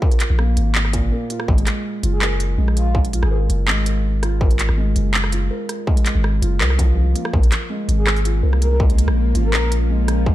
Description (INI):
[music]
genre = half-time drum and bass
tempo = 164 BPM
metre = 4/4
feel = half-time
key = Bb minor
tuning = A4 = 440 Hz
[part]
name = felt-muted upright piano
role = arpeggios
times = 0.0-10.3 s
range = Bb2 to Bb4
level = -26 LUFS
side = right 1 dB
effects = ping-pong delay
[part]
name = electronic kick drum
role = drums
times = 0.0-10.3 s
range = none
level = -18 LUFS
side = equal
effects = distortion, small room ambience
[part]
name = industrial drum kit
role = drums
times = 0.1-10.2 s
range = handclaps, hi-hat, rim click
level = -24 LUFS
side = equal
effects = small room ambience
[part]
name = long sustained 808-style bass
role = bass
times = 0.3-10.3 s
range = Gb1 to C2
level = -18 LUFS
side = equal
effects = none
[part]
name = breathy flute-like synth lead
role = melody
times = 2.1-3.4, 8.0-9.7 s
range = F4 to Bb4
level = -29 LUFS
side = left 1 dB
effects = lush chorus, ping-pong delay
[part]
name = bowed-like drone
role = sustained chords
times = 8.2-10.3 s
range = F3 to F4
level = -27 LUFS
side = equal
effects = built-in reverb, sidechain pumping
[sound]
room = light reverb, digital ambience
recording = dark, warm production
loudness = -16 LUFS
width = side -14 dB against mid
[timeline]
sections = 0.0-10.3 A section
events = none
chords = 0.0 Bb5; 1.5 N.C.; 7.3 Bbm